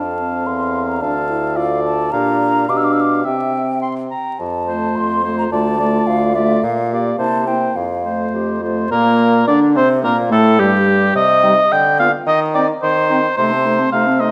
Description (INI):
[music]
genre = quick classical-period movement for wind quintet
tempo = 107 BPM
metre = 2/4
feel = straight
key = F major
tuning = A4 = 440 Hz
[part]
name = mellow hollow concert flute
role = melody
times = 0.0-14.3 s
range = G4 to E6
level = -24 LUFS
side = equal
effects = none
[part]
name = warm oboe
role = second line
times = 0.0-14.3 s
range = G4 to C6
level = -20 LUFS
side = equal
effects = none
[part]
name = mellow French horn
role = accompaniment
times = 0.0-14.3 s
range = G3 to F4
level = -22 LUFS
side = equal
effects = none
[part]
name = mellow clarinet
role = accompaniment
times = 0.0-14.3 s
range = G3 to A4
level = -27 LUFS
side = equal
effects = none
[part]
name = clear bassoon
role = bass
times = 0.0-14.3 s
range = D2 to Eb3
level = -23 LUFS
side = equal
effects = none
[sound]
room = wet recital hall reverb, RT60 1.7 s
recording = vinyl crackle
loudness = -16 LUFS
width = mono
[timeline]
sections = 0.0-8.9 A section; 8.9-14.3 B section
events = none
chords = 0.0 F; 1.0 Dm; 2.1 Gm7/Bb; 2.7 G7/B; 3.3 C; 4.4 F; 5.5 Dm; 6.6 Gm7/Bb; 7.2 C7; 7.8 F; 8.9 N.C.; 9.5 Csus2; 10.0 Gm; 11.1 Cm; 11.7 G7/D; 12.3 Cm/Eb; 13.4 Adim/C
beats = 0.46 | 1.02 1.57 | 2.12 2.68 | 3.25 3.82 | 4.39 4.95 | 5.52 6.08 | 6.63 7.19 | 7.76 8.33 | 8.91 9.47 | 10.03 10.59 | 11.15 11.71 | 12.27 12.82 | 13.37 13.92